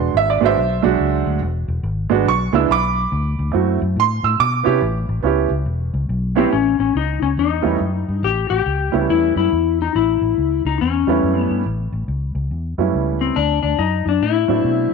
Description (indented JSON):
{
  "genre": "electric blues shuffle",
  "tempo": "141 BPM",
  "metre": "4/4",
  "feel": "swing 63% on 8ths",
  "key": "A mixolydian",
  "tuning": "A4 = 439 Hz",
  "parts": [
    { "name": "warm upright piano", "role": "accompaniment", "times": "0.0-14.9 s", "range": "A2 to E6", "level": "-18 LUFS", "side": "right 10 dB", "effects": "none" },
    { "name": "vintage muted fingered electric bass", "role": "bass", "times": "0.0-14.9 s", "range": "E1 to C3", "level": "-21 LUFS", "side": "left 1 dB", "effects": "none" },
    { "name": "clean lap steel guitar", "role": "melody", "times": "6.4-14.9 s", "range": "C4 to G4", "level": "-18 LUFS", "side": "left 13 dB", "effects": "slapback echo" }
  ],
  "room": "light reverb, studio reverb",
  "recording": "1960s-style stereo with parts hard left and right",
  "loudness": "-16 LUFS",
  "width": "side -4 dB against mid",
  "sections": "0.0-6.5 A section; 6.5-14.9 B section",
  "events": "none",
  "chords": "0.0 E9; 3.1 D9; 4.8 A9; 5.7 E5; 6.5 A9; 13.4 D9"
}